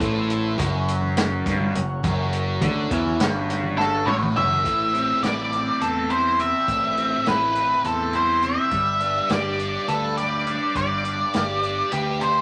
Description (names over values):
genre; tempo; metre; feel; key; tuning
psychedelic rock; 206 BPM (eighths); 7/8; straight; unclear; A4 = 441 Hz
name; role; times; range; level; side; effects
combo organ; sustained chords; 0.0-4.6 s; F#3 to C#5; -34 LUFS; equal; none
fuzz guitar; riff; 0.0-12.4 s; F#2 to C5; -28 LUFS; equal; distortion, phaser
growling fingered electric bass; bass; 0.0-12.4 s; F#1 to E2; -31 LUFS; equal; overdrive
vintage drum kit; drums; 0.0-12.3 s; hi-hat, kick drum, snare drum, toms; -30 LUFS; equal; none
congas; percussion; 0.6-4.6 s; none; -34 LUFS; equal; none
octave-fuzz lead guitar; melody; 3.8-12.4 s; G4 to E5; -24 LUFS; equal; distortion
room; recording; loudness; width
wet studio ambience, RT60 0.5 s; vinyl crackle; -22 LUFS; mono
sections
0.0-4.6 A section; 4.6-12.4 B section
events
drum fill 3.8-4.6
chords
0.0 Am; 0.6 F#5; 4.6 Am; 8.7 G